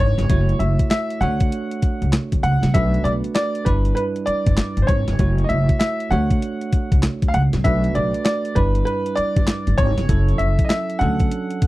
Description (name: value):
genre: R&B, new jack swing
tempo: 98 BPM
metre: 4/4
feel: swing 62% on 16ths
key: unclear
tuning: A4 = 438 Hz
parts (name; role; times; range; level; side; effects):
- clear concert grand piano; melody; 0.0-11.7 s; B4 to F#5; -23 LUFS; equal; none
- bell-like tine electric piano; accompaniment; 0.0-11.7 s; F#3 to C#5; -27 LUFS; right 4 dB; none
- upright bass; bass; 0.0-11.7 s; F#1 to D2; -20 LUFS; equal; none
- crisp 8-bit digital drum machine; drums; 0.2-11.7 s; handclaps, hi-hat, kick drum, snare drum; -20 LUFS; equal; none
room: little or no reverb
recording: dry, close 1970s-style studio recording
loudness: -17 LUFS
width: side -18 dB against mid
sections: 0.0-11.7 A section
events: none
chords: 0.3 F#m7; 1.2 Dmaj7; 2.7 Bm7; 3.7 G6; 5.2 F#m7; 6.1 Dmaj7; 7.6 Bm7; 8.6 G6; 10.1 F#m7; 11.0 Dmaj7